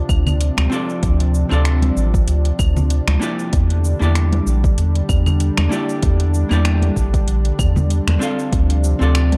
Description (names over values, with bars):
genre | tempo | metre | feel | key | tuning
sunset chillout | 96 BPM | 4/4 | swing 56% on 16ths | D minor | A4 = 440 Hz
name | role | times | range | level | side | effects
vintage hollow-body jazz guitar | accompaniment | 0.0-9.4 s | Bb3 to F5 | -27 LUFS | equal | tape echo
lush unison pad | sustained chords | 0.0-9.4 s | C3 to D4 | -27 LUFS | equal | chorus
round analog bass | bass | 0.1-9.4 s | A1 to E2 | -18 LUFS | equal | tube saturation
deep house drum kit | drums | 0.1-9.4 s | cabasa, claves, finger snaps, hi-hat | -29 LUFS | equal | overdrive
electronic kick drum | drums | 0.1-8.7 s | none | -21 LUFS | equal | overdrive
congas | percussion | 0.3-9.4 s | none | -28 LUFS | equal | none
room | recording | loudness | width
little or no reverb | dark, warm production | -17 LUFS | mono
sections
0.0-9.4 A section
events
none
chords
0.0 Dm7; 3.5 Em7b5; 8.5 Dm7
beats
0.40 | 1.03 1.65 2.28 2.90 | 3.53 4.15 4.78 5.40 | 6.03 6.65 7.28 7.90 | 8.53 9.15